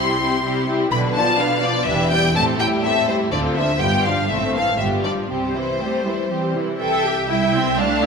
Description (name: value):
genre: quick classical-period movement for string orchestra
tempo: 123 BPM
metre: 3/4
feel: straight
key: C major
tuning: A4 = 440 Hz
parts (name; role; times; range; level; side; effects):
- rich symphonic violin section; melody; 0.0-8.1 s; C5 to C6; -22 LUFS; left 3 dB; none
- warm symphonic violin section; second line; 0.0-8.1 s; A3 to G5; -23 LUFS; left 2 dB; none
- clear studio viola section; accompaniment; 0.0-8.0 s; D3 to A4; -23 LUFS; right 1 dB; none
- warm symphonic cello section; bass; 0.0-8.1 s; D2 to A3; -25 LUFS; right 3 dB; none
- clear symphonic double bass section; bass; 0.9-8.1 s; E1 to D2; -29 LUFS; right 4 dB; none
room: wet concert hall reverb, RT60 2.0 s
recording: minimal, uncompressed stereo recording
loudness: -17 LUFS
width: side -5 dB against mid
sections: 0.0-6.8 A section; 6.8-8.1 B section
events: none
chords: 0.0 C; 0.9 Bdim; 1.9 Em7; 2.4 Am7; 3.3 Dm7; 3.8 G7; 4.3 Am; 4.8 G7; 5.3 C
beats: 0.44 | 0.92 1.40 1.87 | 2.35 2.84 3.33 | 3.81 4.30 4.79 | 5.30 5.80 6.31 | 6.81 7.30 7.79